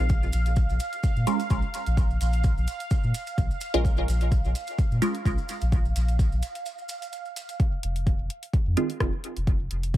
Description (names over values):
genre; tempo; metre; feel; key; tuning
dub techno; 128 BPM; 4/4; swing 54% on 16ths; unclear; A4 = 438 Hz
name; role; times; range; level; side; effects
soft dub sub bass; bass; 0.0-10.0 s; F1 to Bb2; -25 LUFS; equal; sidechain pumping
bubbling stepped-filter texture; texture; 0.0-7.6 s; F5; -36 LUFS; right 3 dB; chorus, built-in reverb, sidechain pumping
deep house drum kit; drums; 0.1-10.0 s; hi-hat, rim click; -37 LUFS; left 1 dB; none
electronic kick drum; drums; 0.1-10.0 s; none; -24 LUFS; equal; none
maracas; percussion; 0.1-7.6 s; none; -43 LUFS; right 4 dB; none
filtered dub chord stab; stabs; 1.3-5.1, 8.8-8.9 s; Eb3 to Bb4; -29 LUFS; right 2 dB; phaser, cassette tape, sidechain pumping, dub echo
room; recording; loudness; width
little or no reverb; none; -23 LUFS; side -14 dB against mid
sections
0.0-7.6 A section; 7.6-10.0 A section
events
break 6.7-7.6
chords
0.1 Bb5; 7.6 N.C.